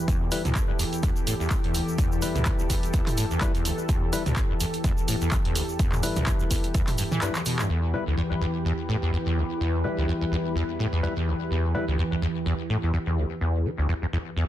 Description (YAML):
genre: acid house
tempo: 126 BPM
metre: 4/4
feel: swing 56% on 16ths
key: E minor pentatonic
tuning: A4 = 440 Hz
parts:
  - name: lush unison pad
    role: sustained chords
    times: 0.0-14.5 s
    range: E2 to B4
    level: -31 LUFS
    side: equal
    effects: chorus, sidechain pumping
  - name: acid bass, saw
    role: riff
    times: 0.1-14.4 s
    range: D2 to E3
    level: -27 LUFS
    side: equal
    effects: tube saturation, ensemble chorus, sidechain pumping, ping-pong delay
  - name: electronic kick drum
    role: drums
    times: 0.1-6.9 s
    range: none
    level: -26 LUFS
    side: equal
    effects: none
  - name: punchy analog drum machine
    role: drums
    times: 0.1-7.7 s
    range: handclaps, hi-hat, toms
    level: -30 LUFS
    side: right 1 dB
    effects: low-pass filter on hats, low-pass filter on cymbals, low-pass filter on toms, low-pass filter on snare
  - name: egg shaker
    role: percussion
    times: 0.1-7.7 s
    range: none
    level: -38 LUFS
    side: right 3 dB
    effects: none
  - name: percussive organ stab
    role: stabs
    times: 0.3-11.9 s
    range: G3 to B4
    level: -34 LUFS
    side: left 4 dB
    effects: chorus, ping-pong delay
room: light reverb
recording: dense, heavily limited modern master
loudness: -23 LUFS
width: side -12 dB against mid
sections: 0.0-7.7 A section; 7.7-14.5 B section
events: kick drops out 7.2-7.7; drum fill 7.3-7.7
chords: 0.0 Em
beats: | 0.08 0.56 1.03 1.51 | 1.98 2.46 2.94 3.41 | 3.89 4.37 4.84 5.32 | 5.79 6.27 6.75 7.22 | 7.70 8.18 8.65 9.13 | 9.60 10.08 10.56 11.03 | 11.51 11.98 12.46 12.94 | 13.41 13.89 14.37